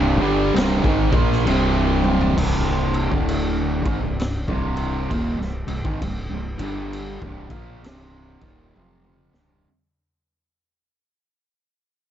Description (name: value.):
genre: stoner and doom metal.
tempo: 66 BPM.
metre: 4/4.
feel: swing 62% on 8ths.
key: C minor.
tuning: A4 = 441 Hz.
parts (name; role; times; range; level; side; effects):
distorted electric guitar; riff; 0.0-2.4 s; C2 to Bb3; -24 LUFS; equal; overdrive.
fuzz guitar; riff; 0.0-9.7 s; C2 to Bb3; -23 LUFS; right 1 dB; distortion.
growling fingered electric bass; bass; 0.0-9.6 s; C1 to Bb1; -25 LUFS; equal; overdrive.
raw garage drum kit; drums; 0.6-9.7 s; crash cymbal, kick drum, snare drum, toms; -26 LUFS; equal; none.
room: small room reverb.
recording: dark, warm production, nothing above 7.8 kHz.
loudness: -19 LUFS.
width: side -10 dB against mid.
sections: 0.0-2.4 A section; 2.4-9.7 B section.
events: drum fill 1.9-2.4, 8.8-9.7; fade-out 2.4-9.7.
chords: 0.0 Cm.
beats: 0.56 1.47 | 2.37 3.28 4.20 5.11 | 6.02 6.93 7.84 8.76.